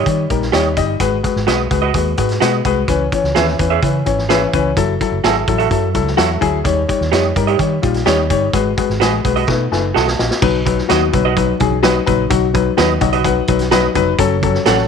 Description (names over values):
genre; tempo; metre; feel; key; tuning
uptempo 1960s-style soul; 127 BPM; 4/4; straight; unclear; A4 = 444 Hz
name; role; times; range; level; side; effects
electric guitar through a small old amp; stabs; 0.0-14.8 s; F#4 to F#5; -20 LUFS; right 16 dB; spring reverb
warm upright piano; accompaniment; 0.1-14.8 s; E3 to B5; -16 LUFS; left 9 dB; none
vintage muted fingered electric bass; bass; 0.1-14.9 s; E#1 to D#3; -20 LUFS; right 2 dB; none
vintage drum kit; drums; 0.1-14.8 s; crash cymbal, hi-hat, kick drum, snare drum; -20 LUFS; right 2 dB; none
congas; percussion; 10.4-14.8 s; none; -27 LUFS; right 16 dB; none
room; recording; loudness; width
small room ambience; 1960s-style stereo with parts hard left and right; -13 LUFS; side -6 dB against mid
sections
0.0-10.4 A section; 10.4-14.9 B section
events
drum fill 9.5-10.4; upright piano fill 9.5-10.4, 12.8-14.2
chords
0.0 D#7; 1.0 G#m7; 2.9 C#m7; 4.8 F#m7; 6.6 D#7; 8.5 G#m7; 9.5 B7; 10.4 B; 14.2 F#m